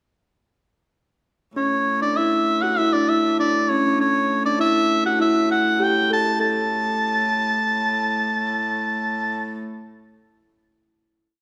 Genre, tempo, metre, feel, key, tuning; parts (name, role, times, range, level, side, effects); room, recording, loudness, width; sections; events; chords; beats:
medieval dance; 100 BPM; 2/4; straight; A mixolydian; A4 = 440 Hz
bright shawm; melody; 1.6-9.6 s; C#5 to A5; -23 LUFS; equal
kalimba; second line; 1.6-10.2 s; C#4 to A4; -25 LUFS; equal
clear hurdy-gurdy; drone; 1.6-9.6 s; A2; -31 LUFS; equal
wet recital hall reverb, RT60 1.6 s; -21 LUFS; mono
1.6-6.4 A section; 6.4-8.8 final note
| 1.58 2.18 | 2.79 3.39 | 4.00 4.60 | 5.20 5.80 | 6.40 7.00 | 7.60 8.19